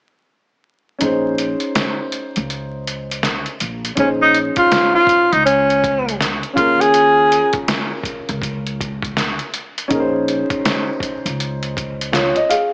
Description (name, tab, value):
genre	hip hop, jazz-hop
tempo	81 BPM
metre	4/4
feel	swing 64% on 16ths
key	Bb minor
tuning	A4 = 440 Hz
part	dark concert grand piano	accompaniment	1.0-12.7 s	Db4 to F5	-21 LUFS	equal	none
part	upright bass	bass	1.0-12.3 s	Bb1 to Eb2	-26 LUFS	equal	none
part	trip hop sampler-style drum kit	drums	1.0-12.7 s	hi-hat, kick drum, snare drum	-21 LUFS	equal	none
part	breathy tenor saxophone	melody	4.0-7.5 s	Db4 to Ab4	-12 LUFS	equal	none
room	light reverb, small room ambience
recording	vinyl crackle, small speaker sound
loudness	-15 LUFS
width	side -29 dB against mid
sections	1.0-4.0 A section; 4.0-12.7 B section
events	kick muted 1.0-4.0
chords	1.0 Bbm11; 3.6 N.C.; 4.0 Bbm11; 6.6 Eb9sus4; 9.9 Bbm11